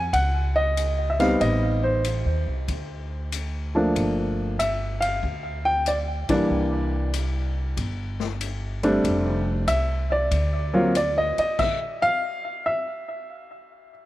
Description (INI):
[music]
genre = jazz piano trio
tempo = 94 BPM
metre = 4/4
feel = swing 67% on 8ths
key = F major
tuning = A4 = 439 Hz
[part]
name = warm upright piano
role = melody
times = 0.0-13.9 s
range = E3 to Ab5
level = -23 LUFS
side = equal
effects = tape echo
[part]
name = upright bass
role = bass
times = 0.0-11.4 s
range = F1 to Eb2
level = -26 LUFS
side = equal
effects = none
[part]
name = swinging big-band drum kit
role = drums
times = 0.1-11.8 s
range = crash cymbal, hi-hat, kick drum, ride cymbal, snare drum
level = -34 LUFS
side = left 4 dB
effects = none
[sound]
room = light reverb, studio ambience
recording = 1960s-style stereo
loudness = -22 LUFS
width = side -15 dB against mid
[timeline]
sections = 0.0-14.1 A section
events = band accent 6.2-6.5; stop 11.6-14.1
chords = 0.0 Gb5; 1.4 Am7b5; 2.7 D5; 4.0 Gm7; 6.5 C9; 9.0 F6; 10.3 N.C.